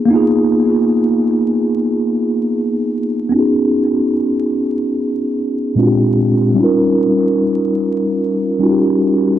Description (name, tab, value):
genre	hip hop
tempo	74 BPM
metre	4/4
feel	swing 65% on 16ths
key	G# dorian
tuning	A4 = 440 Hz
part	mellow tine electric piano	solo	0.0-9.4 s	A#2 to A#4	-13 LUFS	equal	medium stereo tremolo, cassette tape, low-pass filter, analog delay
room	moderate spring reverb, RT60 2.1 s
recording	echo-heavy mix, vinyl crackle, nothing above 10.9 kHz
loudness	-13 LUFS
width	side -11 dB against mid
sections	0.0-3.3 A section; 3.3-9.4 B section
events	filter sweep on tine electric piano 3.3-9.4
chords	0.0 G#m69; 3.3 C#9sus4; 5.8 A#13; 6.6 D#9